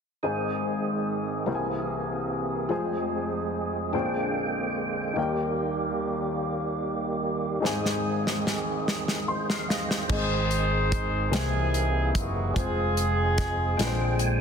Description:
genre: slow gospel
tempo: 49 BPM (dotted quarters)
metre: 6/8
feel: straight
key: Ab major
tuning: A4 = 440 Hz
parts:
  - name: warm upright piano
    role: accompaniment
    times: 0.2-14.4 s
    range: F1 to C6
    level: -30 LUFS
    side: left 3 dB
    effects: none
  - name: percussive tonewheel organ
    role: sustained chords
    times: 0.2-14.4 s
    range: D3 to Ab5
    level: -30 LUFS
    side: right 3 dB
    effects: slow rotary speaker, overdrive, chorus vibrato
  - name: modern studio drum kit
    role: drums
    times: 7.7-14.4 s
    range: crash cymbal, hi-hat, kick drum, snare drum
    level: -29 LUFS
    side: equal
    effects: none
  - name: warm horn section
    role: melody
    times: 10.1-14.2 s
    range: C4 to C5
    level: -28 LUFS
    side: right 1 dB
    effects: none
  - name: fingered electric bass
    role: bass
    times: 10.1-14.4 s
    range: F1 to C2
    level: -27 LUFS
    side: equal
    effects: none
room: moderate concert hall reverb, RT60 2.2 s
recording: dense, heavily limited modern master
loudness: -25 LUFS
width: side -6 dB against mid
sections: 0.2-10.1 A section; 10.1-14.4 B section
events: drum fill 7.6-10.1; upright piano fill 8.9-10.1; tonewheel organ fill 13.8-14.4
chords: 0.2 Ab; 1.5 Caug7; 2.7 Fm; 3.9 Bb13; 5.2 Eb; 7.6 Ab; 11.3 C7alt; 12.6 Fm; 13.8 Bb13

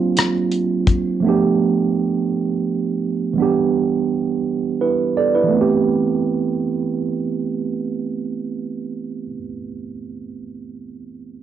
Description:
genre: slow six-eight R&B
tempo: 56 BPM (dotted quarters)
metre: 6/8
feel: straight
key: A minor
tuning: A4 = 440 Hz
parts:
  - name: tine electric piano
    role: accompaniment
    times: 0.0-11.4 s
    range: E3 to D5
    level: -18 LUFS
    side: right 5 dB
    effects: medium stereo tremolo, cassette tape
  - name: damped 70s drum kit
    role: drums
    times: 0.2-1.0 s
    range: hi-hat, kick drum, rim click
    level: -17 LUFS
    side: left 3 dB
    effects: cassette tape
room: wet small room reverb, RT60 0.5 s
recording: home recording on cassette, nothing above 10.4 kHz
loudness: -17 LUFS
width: side -10 dB against mid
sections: 0.0-5.5 A section; 5.5-9.8 B section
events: none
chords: 0.0 D7alt; 1.2 G9; 3.4 Em7; 5.5 Am9

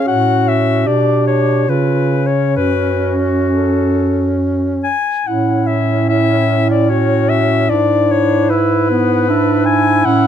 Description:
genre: classical, lyrical piece for single-reed quartet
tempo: 65-78 BPM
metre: 3/4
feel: rubato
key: F# minor, A major from 5.3 s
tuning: A4 = 440 Hz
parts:
  - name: warm soprano saxophone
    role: melody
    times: 0.0-10.3 s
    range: A4 to G#5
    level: -17 LUFS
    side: left 8 dB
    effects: none
  - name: mellow clarinet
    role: second line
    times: 0.0-10.3 s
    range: C#4 to G4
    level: -19 LUFS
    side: right 5 dB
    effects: none
  - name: mellow tenor saxophone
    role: accompaniment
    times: 0.0-10.3 s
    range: B3 to E4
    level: -18 LUFS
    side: equal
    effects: none
  - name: warm bass clarinet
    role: bass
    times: 0.1-10.3 s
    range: F#2 to C#3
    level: -17 LUFS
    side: right 2 dB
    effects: none
room: little or no reverb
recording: close, detailed microphones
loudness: -12 LUFS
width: side -9 dB against mid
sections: 0.0-5.3 A section; 5.3-10.3 B section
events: none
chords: 0.1 F#m/A; 0.9 G/B; 1.7 C#7; 2.6 F#m; 5.3 A; 7.7 E7/G#

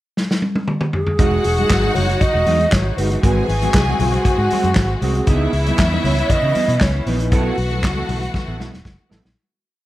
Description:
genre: disco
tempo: 117 BPM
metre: 4/4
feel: straight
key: E major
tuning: A4 = 440 Hz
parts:
  - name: vintage drum kit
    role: drums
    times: 0.2-9.4 s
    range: handclaps, hi-hat, kick drum, snare drum, toms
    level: -20 LUFS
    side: equal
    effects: gated reverb
  - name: breathy alto flute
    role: melody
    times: 0.9-7.8 s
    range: F#4 to D#5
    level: -21 LUFS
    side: right 1 dB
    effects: none
  - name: clear studio string section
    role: second line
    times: 1.2-9.1 s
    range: E4 to G#5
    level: -25 LUFS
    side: left 2 dB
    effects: none
  - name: mellow electric guitar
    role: accompaniment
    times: 1.2-9.3 s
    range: E3 to A4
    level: -24 LUFS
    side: right 4 dB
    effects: ensemble chorus
  - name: clear studio string section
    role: sustained chords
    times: 1.2-9.3 s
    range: E3 to F#4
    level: -27 LUFS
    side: left 2 dB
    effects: none
  - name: fingered electric bass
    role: bass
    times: 1.2-9.3 s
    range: E1 to C#3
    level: -20 LUFS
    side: equal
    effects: none
  - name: congas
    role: percussion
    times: 1.2-9.2 s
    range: none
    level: -28 LUFS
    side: left 5 dB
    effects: none
room: light reverb, small room ambience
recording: none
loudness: -15 LUFS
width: side -15 dB against mid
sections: 0.0-1.2 pickup bar; 1.2-9.4 verse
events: drum fill 0.2-1.2, 8.3-9.4; fade-out 7.3-9.4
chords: 0.0 N.C.; 1.2 Emaj9; 3.2 G#7alt; 5.3 C#m9; 7.3 B7sus4

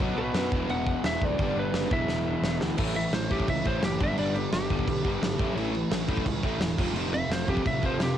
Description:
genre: punk rock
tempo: 172 BPM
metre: 4/4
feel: straight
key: unclear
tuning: A4 = 441 Hz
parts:
  - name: biting overdriven guitar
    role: riff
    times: 0.0-8.2 s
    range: E2 to B3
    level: -33 LUFS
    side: right 9 dB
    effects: cassette tape
  - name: crunchy overdriven guitar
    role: riff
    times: 0.0-8.2 s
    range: E2 to B3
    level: -33 LUFS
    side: left 9 dB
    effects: cassette tape
  - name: fuzz guitar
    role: riff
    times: 0.0-8.2 s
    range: G2 to F#4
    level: -37 LUFS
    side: equal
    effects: distortion, cassette tape
  - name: fuzz picked electric bass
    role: bass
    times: 0.0-8.1 s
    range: E1 to F#2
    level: -33 LUFS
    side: equal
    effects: overdrive
  - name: big rock drum kit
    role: drums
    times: 0.0-8.1 s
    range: crash cymbal, kick drum, snare drum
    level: -30 LUFS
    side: equal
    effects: cassette tape
  - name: lightly driven lead guitar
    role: melody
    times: 0.2-8.2 s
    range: G4 to F#5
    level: -31 LUFS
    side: equal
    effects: cassette tape
room: small room ambience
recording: home recording on cassette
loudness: -25 LUFS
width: side -10 dB against mid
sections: 0.0-2.8 A section; 2.8-8.2 B section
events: drum fill 2.1-2.8; lead electric guitar solo 2.8-8.2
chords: 0.0 B; 0.5 E; 1.4 G; 1.9 E; 2.8 A; 4.0 G; 5.4 A; 6.8 F

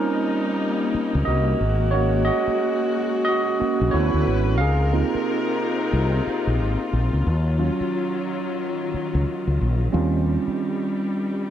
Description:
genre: R&B, neo-soul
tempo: 90 BPM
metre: 4/4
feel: swing 60% on 16ths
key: Eb dorian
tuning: A4 = 444 Hz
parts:
  - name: barky tine electric piano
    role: accompaniment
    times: 0.0-11.5 s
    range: Gb3 to F5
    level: -23 LUFS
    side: right 3 dB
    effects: overdrive, phaser
  - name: rich studio string section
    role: sustained chords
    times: 0.0-11.5 s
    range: C3 to B4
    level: -27 LUFS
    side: left 5 dB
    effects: none
  - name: fretless electric bass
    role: bass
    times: 0.9-10.5 s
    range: Ab1 to Eb2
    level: -21 LUFS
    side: left 1 dB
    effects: none
room: small room ambience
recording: dry, close 1970s-style studio recording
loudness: -20 LUFS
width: side -10 dB against mid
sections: 0.0-11.5 A section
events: tine electric piano solo 0.0-11.5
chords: 0.0 Eb13; 1.6 Ab9sus4; 3.9 Dmaj13; 4.6 Dbmaj13; 7.3 Ebm9; 9.9 Eb13

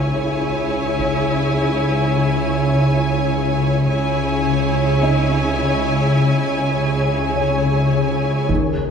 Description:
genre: cinematic, suspense film score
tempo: 52 BPM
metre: 4/4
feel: straight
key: unclear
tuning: A4 = 440 Hz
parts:
  - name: warm chamber violin section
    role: melody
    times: 0.0-8.5 s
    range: Ab5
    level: -26 LUFS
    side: left 1 dB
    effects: none
  - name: rich chamber violin section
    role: second line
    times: 0.0-8.4 s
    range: Db5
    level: -27 LUFS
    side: left 3 dB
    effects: none
  - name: rich chamber viola section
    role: accompaniment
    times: 0.0-8.5 s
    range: Fb4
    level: -27 LUFS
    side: equal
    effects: none
  - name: flickering grainy texture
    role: sustained chords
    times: 0.0-8.9 s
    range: Fb4 to Ab5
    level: -25 LUFS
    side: right 1 dB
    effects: built-in reverb
  - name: concert harp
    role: riff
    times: 0.0-8.9 s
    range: Db3 to Db4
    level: -23 LUFS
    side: left 8 dB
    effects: none
  - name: dark chamber cello section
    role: bass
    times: 0.0-8.9 s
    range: Db3 to Eb3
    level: -24 LUFS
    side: right 2 dB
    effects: none
  - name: rich chamber double bass section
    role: bass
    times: 0.0-8.9 s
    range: Db2 to Eb2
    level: -23 LUFS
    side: right 6 dB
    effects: none
  - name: deep rumbling drone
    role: drone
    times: 0.0-8.9 s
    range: Db2 to Eb2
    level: -32 LUFS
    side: right 1 dB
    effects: built-in reverb
  - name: felt-muted upright piano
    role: texture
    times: 0.0-8.9 s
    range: Eb4 to Fb5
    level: -30 LUFS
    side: left 1 dB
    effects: none
  - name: taiko ensemble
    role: drums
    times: 1.0-1.5, 8.5-8.9 s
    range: none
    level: -27 LUFS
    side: right 1 dB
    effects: none
room: wet scoring stage reverb, RT60 1.8 s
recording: minimal, uncompressed stereo recording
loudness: -16 LUFS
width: side -6 dB against mid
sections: 0.0-8.9 A section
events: none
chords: 0.0 Dbm

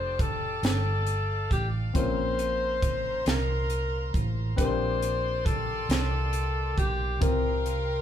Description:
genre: slow gospel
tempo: 46 BPM (dotted quarters)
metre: 6/8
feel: straight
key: unclear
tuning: A4 = 441 Hz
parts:
  - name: breathy alto saxophone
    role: melody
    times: 0.0-8.0 s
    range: G4 to C5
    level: -30 LUFS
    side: left 2 dB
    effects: none
  - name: warm baby grand piano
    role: accompaniment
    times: 0.0-8.0 s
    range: Bb2 to Bb4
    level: -34 LUFS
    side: left 5 dB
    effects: none
  - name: rich chamber string section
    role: sustained chords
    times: 0.0-8.0 s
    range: C5 to C6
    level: -39 LUFS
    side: equal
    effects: none
  - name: hollow-body short-scale fingered electric bass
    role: bass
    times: 0.0-8.0 s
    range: F1 to C2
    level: -30 LUFS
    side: right 1 dB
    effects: none
  - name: crisp fusion drum kit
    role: drums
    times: 0.2-7.9 s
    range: hi-hat, kick drum, snare drum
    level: -30 LUFS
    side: right 1 dB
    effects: none
room: moderate studio reverb, RT60 0.8 s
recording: band playing live in one room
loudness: -25 LUFS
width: side -10 dB against mid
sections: 0.0-8.0 A section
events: none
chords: 0.0 F69; 1.9 Bbmadd9; 4.6 Bb69; 7.2 C7sus4

